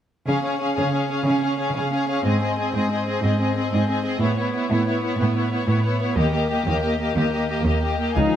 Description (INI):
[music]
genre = cinematic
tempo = 122 BPM (dotted quarters)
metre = 12/8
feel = straight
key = Db lydian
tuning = A4 = 442 Hz
[part]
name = warm studio violin section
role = melody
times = 0.3-8.4 s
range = C#5 to F5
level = -30 LUFS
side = left 5 dB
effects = none
[part]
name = warm symphonic violin section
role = second line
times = 0.3-8.4 s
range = E4 to Ab4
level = -27 LUFS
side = left 4 dB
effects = none
[part]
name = warm symphonic viola section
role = accompaniment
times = 0.3-8.3 s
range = Bb3 to Eb4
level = -25 LUFS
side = right 1 dB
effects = none
[part]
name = rich symphonic cello section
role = bass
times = 0.3-8.2 s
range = Db2 to Db3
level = -23 LUFS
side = right 2 dB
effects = none
[part]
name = mellow French horn section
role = sustained chords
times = 8.2-8.4 s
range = F3 to Eb4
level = -22 LUFS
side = left 6 dB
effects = none
[part]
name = concert harp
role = arpeggios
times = 8.2-8.4 s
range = Db3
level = -28 LUFS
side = left 9 dB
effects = none
[part]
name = warm symphonic double bass section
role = bass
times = 8.2 s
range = Db2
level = -24 LUFS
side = right 2 dB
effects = none
[sound]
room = moderate scoring stage reverb, RT60 1.6 s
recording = none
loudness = -20 LUFS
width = side -10 dB against mid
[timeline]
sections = 0.3-8.2 A section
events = none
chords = 0.3 Db; 2.3 Ab; 4.2 Aadd9; 6.2 Eb